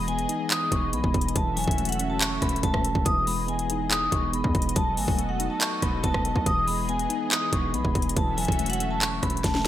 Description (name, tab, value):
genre	hip hop, trap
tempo	141 BPM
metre	4/4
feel	half-time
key	E major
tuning	A4 = 440 Hz
part	vibraphone with medium hard mallets	melody	0.0-9.7 s	F#5 to D#6	-28 LUFS	left 1 dB	none
part	mellow tine electric piano	accompaniment	0.0-9.7 s	E3 to D#4	-31 LUFS	left 1 dB	medium stereo tremolo
part	warm analog pad	sustained chords	0.0-9.7 s	E3 to E5	-35 LUFS	right 1 dB	chorus
part	hard-hitting 808-style bass	bass	0.0-9.7 s	E1 to E2	-30 LUFS	equal	none
part	trap drum kit	drums	0.1-9.7 s	handclaps, hi-hat, kick drum, rim click, snare drum	-26 LUFS	equal	gated reverb
room	light reverb, digital ambience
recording	bright 1980s-style digital production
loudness	-23 LUFS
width	side -12 dB against mid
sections	0.0-9.7 A section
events	drum fill 9.4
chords	0.0 Emaj7; 1.4 A6/E; 3.1 Emaj7; 4.8 B7/E; 6.5 Emaj7; 8.2 A6/E